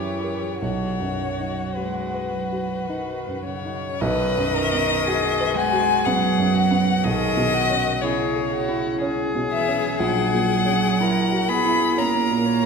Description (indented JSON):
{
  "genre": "classical, slow romantic movement for piano quartet",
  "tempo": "51-62 BPM",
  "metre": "3/4",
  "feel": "rubato",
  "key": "B major",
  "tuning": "A4 = 445 Hz",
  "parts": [
    { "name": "rich violin", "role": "melody", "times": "0.0-12.7 s", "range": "B4 to B5", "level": "-24 LUFS", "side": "left 5 dB", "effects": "none" },
    { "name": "rich cello", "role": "second line", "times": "0.0-12.7 s", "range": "C#3 to B3", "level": "-26 LUFS", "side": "right 6 dB", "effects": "none" },
    { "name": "warm violin", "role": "second line", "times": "0.0-12.7 s", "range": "F#4 to C#5", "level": "-27 LUFS", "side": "left 4 dB", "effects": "none" },
    { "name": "warm grand piano", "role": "accompaniment", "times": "0.0-12.7 s", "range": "A#1 to B4", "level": "-25 LUFS", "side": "right 1 dB", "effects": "none" }
  ],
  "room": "wet concert hall reverb, RT60 2.0 s",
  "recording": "minimal, uncompressed stereo recording",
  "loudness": "-19 LUFS",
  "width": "side -5 dB against mid",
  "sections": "0.0-4.0 A section; 4.0-12.7 A section",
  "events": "none",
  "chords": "0.0 F#7b9; 0.6 B; 7.0 C#m7/B; 10.0 F#7/A#"
}